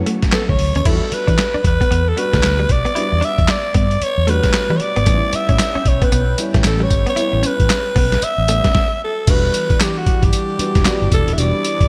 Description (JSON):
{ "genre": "R&B, new jack swing", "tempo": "114 BPM", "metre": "4/4", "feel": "swing 61% on 16ths", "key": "E dorian", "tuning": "A4 = 440 Hz", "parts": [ { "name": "dark concert grand piano", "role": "accompaniment", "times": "0.0-11.9 s", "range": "F#3 to G4", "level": "-29 LUFS", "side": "equal", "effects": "subtle chorus" }, { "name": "lush unison pad", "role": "sustained chords", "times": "0.0-0.8, 5.1-11.9 s", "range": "E3 to C#6", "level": "-30 LUFS", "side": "equal", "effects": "chorus" }, { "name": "direct-recorded clean electric guitar", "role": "riff", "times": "0.0-8.6 s", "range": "G3 to E4", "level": "-28 LUFS", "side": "equal", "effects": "tube saturation, lush chorus" }, { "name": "boom bap sampler-style drum kit", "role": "drums", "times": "0.1-11.9 s", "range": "crash cymbal, handclaps, hi-hat, kick drum, snare drum, tambourine", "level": "-20 LUFS", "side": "equal", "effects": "none" }, { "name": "raspy alto saxophone", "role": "melody", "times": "0.3-11.9 s", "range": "F#4 to E5", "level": "-22 LUFS", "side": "equal", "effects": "none" }, { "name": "vintage muted fingered electric bass", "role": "bass", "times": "0.5-11.9 s", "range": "D#1 to E3", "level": "-21 LUFS", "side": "equal", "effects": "none" } ], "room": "light reverb, digital ambience", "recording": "bright 1980s-style digital production", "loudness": "-16 LUFS", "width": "mono", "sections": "0.9-9.3 A section; 9.3-11.9 B section", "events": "stop 8.8-9.3", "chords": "0.0 Dmaj7; 0.9 Em7; 5.1 A9; 9.3 Em7" }